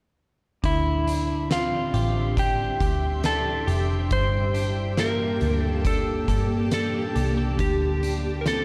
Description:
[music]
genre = dream pop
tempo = 69 BPM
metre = 4/4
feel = straight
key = unclear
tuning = A4 = 440 Hz
[part]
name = granular cloud pad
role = sustained chords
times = 2.1-8.6 s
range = Bb3 to C6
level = -34 LUFS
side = equal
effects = built-in reverb
[part]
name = clean electric guitar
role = arpeggios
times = 0.6-8.6 s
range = G2 to A4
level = -32 LUFS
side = equal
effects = subtle chorus, delay
[part]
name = vintage muted picked electric bass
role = bass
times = 0.6-8.6 s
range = F1 to G2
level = -29 LUFS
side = equal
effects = none
[part]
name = oversized low-tuned drum kit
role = drums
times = 0.6-8.6 s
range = hi-hat, kick drum, snare drum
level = -31 LUFS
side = equal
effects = none
[part]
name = clean lap steel guitar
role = melody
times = 0.7-8.6 s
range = E4 to C5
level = -30 LUFS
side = equal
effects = delay
[sound]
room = light reverb, small room ambience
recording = dark, warm production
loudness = -24 LUFS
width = mono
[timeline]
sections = 0.6-8.6 A section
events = none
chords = 0.6 Dm11; 4.1 Gmadd9; 7.6 D9sus4

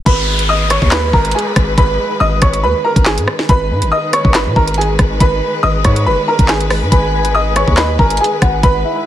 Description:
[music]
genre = hip hop, drill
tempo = 140 BPM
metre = 4/4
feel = half-time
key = G# minor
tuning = A4 = 440 Hz
[part]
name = clear upright piano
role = melody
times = 0.1-9.0 s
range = G#4 to D#6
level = -16 LUFS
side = right 1 dB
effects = tape echo
[part]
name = warm symphonic string section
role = sustained chords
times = 0.1-9.1 s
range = D#3 to B4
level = -21 LUFS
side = left 2 dB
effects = none
[part]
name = distorted 808-style bass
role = bass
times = 0.1-8.8 s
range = F#1 to B2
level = -17 LUFS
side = equal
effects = distortion
[part]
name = drill drum kit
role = drums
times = 0.1-8.7 s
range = handclaps, hi-hat, kick drum, rim click, snare drum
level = -13 LUFS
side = equal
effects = none
[part]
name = downlifter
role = sound effects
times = 0.1-3.5 s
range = none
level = -23 LUFS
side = left 1 dB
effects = none
[part]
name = soft octave-layered synth lead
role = second line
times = 6.9-9.1 s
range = D#5 to G#5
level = -20 LUFS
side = left 3 dB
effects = chorus, phaser, tape echo
[sound]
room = digital ambience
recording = tape stop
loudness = -11 LUFS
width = side -12 dB against mid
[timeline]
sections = 0.1-9.1 A section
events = none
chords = 0.1 G#m

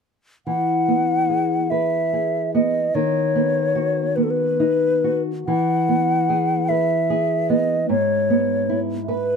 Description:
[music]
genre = romantic duo for flute and classical guitar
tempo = 49 BPM (dotted quarters)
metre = 6/8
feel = rubato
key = E major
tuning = A4 = 440 Hz
[part]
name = mellow hollow silver concert flute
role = melody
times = 0.5-9.4 s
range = A4 to F#5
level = -20 LUFS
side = left 1 dB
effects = none
[part]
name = nylon-string guitar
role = accompaniment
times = 0.5-9.4 s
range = G#2 to B4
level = -21 LUFS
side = equal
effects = none
[sound]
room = light reverb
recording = close, detailed microphones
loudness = -18 LUFS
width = side -5 dB against mid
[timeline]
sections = 0.5-9.4 A section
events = none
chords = 0.5 E; 3.0 B/D#; 5.5 E; 7.9 E/G#

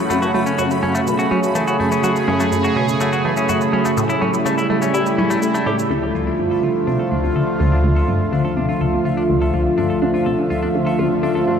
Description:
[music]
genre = ambient, sequencer-driven space music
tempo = 124 BPM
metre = 4/4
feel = straight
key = D minor from 5.9 s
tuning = A4 = 441 Hz
[part]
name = sweeping resonant pad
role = sustained chords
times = 0.0-11.6 s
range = C#3 to G#4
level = -18 LUFS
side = right 1 dB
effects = chorus, shimmer reverb
[part]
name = resonant blip pluck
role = riff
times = 0.0-11.6 s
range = D2 to A3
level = -22 LUFS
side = left 1 dB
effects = phaser, tape echo
[part]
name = pulsing gated texture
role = texture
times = 0.0-11.6 s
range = E5 to B5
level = -29 LUFS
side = right 1 dB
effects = chorus, built-in reverb, shimmer reverb
[part]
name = semi-hollow electric guitar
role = arpeggios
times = 0.1-11.6 s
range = A3 to A4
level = -25 LUFS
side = left 2 dB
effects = auto-pan, tape echo, shimmer reverb
[part]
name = electronic shaker and toms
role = percussion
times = 0.1-5.9 s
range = none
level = -30 LUFS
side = equal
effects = tape echo
[sound]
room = wet cathedral reverb, RT60 6.2 s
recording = in a vast, echoing space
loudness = -16 LUFS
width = side -7 dB against mid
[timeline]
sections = 0.0-5.9 A section; 5.9-11.6 B section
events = fade-in on clean electric guitar 5.9-11.6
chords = 0.0 F#m; 4.0 A7; 5.9 Dm

